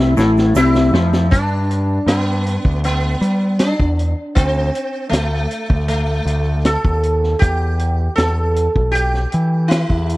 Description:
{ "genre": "psychedelic rock", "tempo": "79 BPM", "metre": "4/4", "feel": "straight", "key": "unclear", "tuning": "A4 = 438 Hz", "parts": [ { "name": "sitar", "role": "melody", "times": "0.0-10.2 s", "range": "A3 to A4", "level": "-20 LUFS", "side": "right 1 dB", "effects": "tape echo" }, { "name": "mellow tonewheel organ", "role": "sustained chords", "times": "0.0-1.3 s", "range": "A3 to E4", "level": "-24 LUFS", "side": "right 8 dB", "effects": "none" }, { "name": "electric guitar through a small old amp", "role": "riff", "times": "0.0-1.3 s", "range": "A2 to F3", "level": "-15 LUFS", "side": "left 2 dB", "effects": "rotary speaker" }, { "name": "growling picked electric bass", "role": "bass", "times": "0.0-10.2 s", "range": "A1 to G3", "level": "-18 LUFS", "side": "equal", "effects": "overdrive" }, { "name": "vintage drum kit", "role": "drums", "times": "0.0-10.2 s", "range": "hi-hat, kick drum, snare drum", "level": "-18 LUFS", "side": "equal", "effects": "none" }, { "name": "egg shaker", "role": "percussion", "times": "0.2-1.2 s", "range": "none", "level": "-38 LUFS", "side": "right 13 dB", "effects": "none" } ], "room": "little or no reverb", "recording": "dry, close 1970s-style studio recording", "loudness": "-14 LUFS", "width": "side -18 dB against mid", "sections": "0.0-1.3 A section; 1.3-10.2 B section", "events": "drum fill 0.0-1.3", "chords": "0.0 A5; 1.3 G; 4.4 D5; 7.4 Em" }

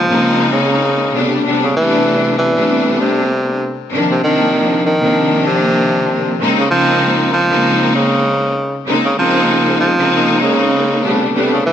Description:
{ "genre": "hip hop", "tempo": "97 BPM", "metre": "4/4", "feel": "swing 58% on 16ths", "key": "Bb dorian", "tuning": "A4 = 440 Hz", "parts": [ { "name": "breathy tenor saxophone", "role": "melody", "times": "0.0-11.7 s", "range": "C3 to F3", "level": "-15 LUFS", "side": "right 1 dB", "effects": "high-pass filter, low-pass filter, ping-pong delay" }, { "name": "warm studio string section", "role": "accompaniment", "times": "0.1-11.7 s", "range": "C3 to Eb4", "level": "-14 LUFS", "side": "left 1 dB", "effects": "high-pass filter, low-pass filter" } ], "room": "light reverb", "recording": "none", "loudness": "-12 LUFS", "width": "side -9 dB against mid", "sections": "0.0-11.7 A section", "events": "none", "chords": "0.0 Bbm11; 1.1 Am11; 3.9 Cm11; 6.4 Bbm11; 11.0 Am11" }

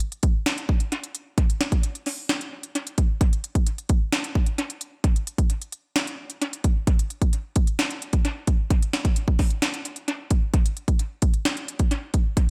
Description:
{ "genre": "hip hop", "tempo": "131 BPM", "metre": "4/4", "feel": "half-time", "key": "none", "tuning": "none", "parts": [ { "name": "trap drum kit", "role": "drums", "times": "0.0-12.5 s", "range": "hi-hat, kick drum, snare drum", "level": "-24 LUFS", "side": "equal", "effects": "tape echo" } ], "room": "light reverb, digital ambience", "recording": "echo-heavy mix", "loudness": "-25 LUFS", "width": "mono", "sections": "0.0-6.9 A section; 6.9-12.5 B section", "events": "none", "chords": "none" }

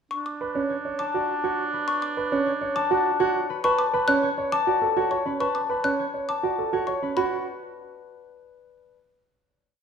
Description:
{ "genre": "classical, minimalist pattern music", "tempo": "102 BPM", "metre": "3/4", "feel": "straight", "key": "B minor", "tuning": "A4 = 442 Hz", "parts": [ { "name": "warm oboe", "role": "second line", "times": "0.1-3.5 s", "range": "D4", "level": "-30 LUFS", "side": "right 5 dB", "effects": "none" }, { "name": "xylophone with soft rubber mallets", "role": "arpeggios", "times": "0.1-7.4 s", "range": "B5 to F#6", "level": "-28 LUFS", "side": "left 2 dB", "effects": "none" }, { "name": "clear concert grand piano", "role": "arpeggios", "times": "0.4-7.4 s", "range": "C#4 to C#5", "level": "-25 LUFS", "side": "right 5 dB", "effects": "none" }, { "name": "concert harp", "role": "melody", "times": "0.7-9.0 s", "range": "B4 to A5", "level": "-28 LUFS", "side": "left 8 dB", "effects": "none" } ], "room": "moderate recital hall reverb, RT60 1.5 s", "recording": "none", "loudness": "-22 LUFS", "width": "side -6 dB against mid", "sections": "0.1-7.2 A section; 7.2-8.9 final chord", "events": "none", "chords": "0.1 Bm7" }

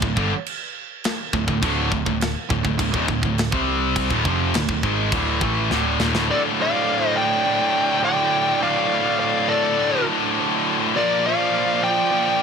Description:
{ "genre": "heavy metal", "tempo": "103 BPM", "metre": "4/4", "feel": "straight", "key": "D phrygian", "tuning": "A4 = 440 Hz", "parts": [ { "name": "heavy high-gain guitar", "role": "riff", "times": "0.0-12.4 s", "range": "D2 to C4", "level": "-24 LUFS", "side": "right 13 dB", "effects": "distortion" }, { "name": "scooped high-gain guitar", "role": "riff", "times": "0.0-12.4 s", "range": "D2 to C4", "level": "-23 LUFS", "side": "left 16 dB", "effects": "distortion" }, { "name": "overdriven picked electric bass", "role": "bass", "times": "0.0-6.3 s", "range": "D1 to C2", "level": "-25 LUFS", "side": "equal", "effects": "none" }, { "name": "tight metal drum kit", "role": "drums", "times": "0.0-6.3 s", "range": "crash cymbal, kick drum, snare drum", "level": "-25 LUFS", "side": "equal", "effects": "none" }, { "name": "high-gain lead guitar", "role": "melody", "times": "6.3-12.4 s", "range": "D5 to G5", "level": "-21 LUFS", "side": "left 1 dB", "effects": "distortion" }, { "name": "high-gain lead guitar", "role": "second line", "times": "6.3-12.4 s", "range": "A4 to D5", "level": "-27 LUFS", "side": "right 2 dB", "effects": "distortion, digital delay" } ], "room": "light reverb", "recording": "none", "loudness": "-18 LUFS", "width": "side -6 dB against mid", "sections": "0.0-6.3 A section; 6.3-12.4 B section", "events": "drum fill 5.7-6.3", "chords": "0.0 D5; 3.5 C5; 4.1 Dm; 11.0 Bb" }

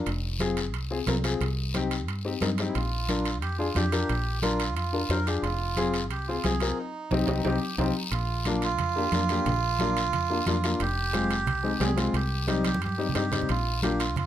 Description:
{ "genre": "latin, cumbia", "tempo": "179 BPM", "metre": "4/4", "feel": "straight", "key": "unclear", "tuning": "A4 = 440 Hz", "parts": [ { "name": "warm upright piano", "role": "accompaniment", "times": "0.0-14.0 s", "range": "G3 to C5", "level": "-29 LUFS", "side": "left 4 dB", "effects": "none" }, { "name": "fingered electric bass", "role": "bass", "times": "0.1-14.3 s", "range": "F1 to G2", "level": "-30 LUFS", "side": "equal", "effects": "none" }, { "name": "congas", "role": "percussion", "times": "0.1-14.3 s", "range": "none", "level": "-34 LUFS", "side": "right 2 dB", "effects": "none" }, { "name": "guiro", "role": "percussion", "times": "0.1-14.3 s", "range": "none", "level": "-37 LUFS", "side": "left 6 dB", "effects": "none" }, { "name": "timbales", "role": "percussion", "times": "0.1-14.3 s", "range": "none", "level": "-37 LUFS", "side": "right 8 dB", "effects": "none" }, { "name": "melodica", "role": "second line", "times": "2.7-14.3 s", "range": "D4 to Bb4", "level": "-31 LUFS", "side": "right 5 dB", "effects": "none" } ], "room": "light reverb", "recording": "close, detailed microphones", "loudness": "-25 LUFS", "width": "side -11 dB against mid", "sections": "0.0-8.1 A section; 8.1-14.3 A section", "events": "band accent 6.8-8.1; drum fill 7.5-8.1, 12.7-13.5", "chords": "0.1 Fm; 1.4 Cm; 2.8 Bb; 5.4 Fm; 6.8 Cm; 8.1 Bb; 10.8 Fm; 12.2 Cm; 13.5 Bb" }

